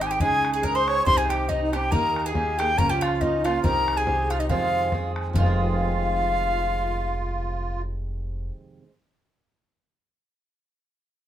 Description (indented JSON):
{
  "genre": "celtic folk, Celtic polka",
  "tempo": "140 BPM",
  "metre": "2/4",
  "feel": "swing 56% on 8ths",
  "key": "F minor",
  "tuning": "A4 = 441 Hz",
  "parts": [
    { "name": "bright wooden flute", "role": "melody", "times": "0.0-7.8 s", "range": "Eb5 to Db6", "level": "-24 LUFS", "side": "left 2 dB", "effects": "none" },
    { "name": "bowl-back mandolin", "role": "second line", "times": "0.0-8.5 s", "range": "Eb4 to C5", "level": "-34 LUFS", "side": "right 2 dB", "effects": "none" },
    { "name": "musette accordion", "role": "second line", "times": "0.0-7.8 s", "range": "Eb4 to Db5", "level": "-32 LUFS", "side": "right 2 dB", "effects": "none" },
    { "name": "fingerpicked swing-style acoustic guitar", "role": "accompaniment", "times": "0.0-9.0 s", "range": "F2 to Ab4", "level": "-29 LUFS", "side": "right 4 dB", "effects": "none" },
    { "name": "upright bass", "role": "bass", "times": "0.0-8.5 s", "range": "F1 to F2", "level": "-28 LUFS", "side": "equal", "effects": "none" },
    { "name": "bodhran", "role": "percussion", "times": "0.0-5.6 s", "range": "none", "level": "-29 LUFS", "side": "left 1 dB", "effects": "none" }
  ],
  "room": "moderate studio reverb, RT60 0.6 s",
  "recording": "minimal, uncompressed stereo recording",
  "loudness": "-21 LUFS",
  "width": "side -11 dB against mid",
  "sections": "0.0-5.3 A section; 5.3-7.1 B section",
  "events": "none",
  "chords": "0.2 Dbsus2; 1.1 Cm; 1.9 Eb; 2.8 Bbm/Db; 3.6 Cm; 4.5 Fm7"
}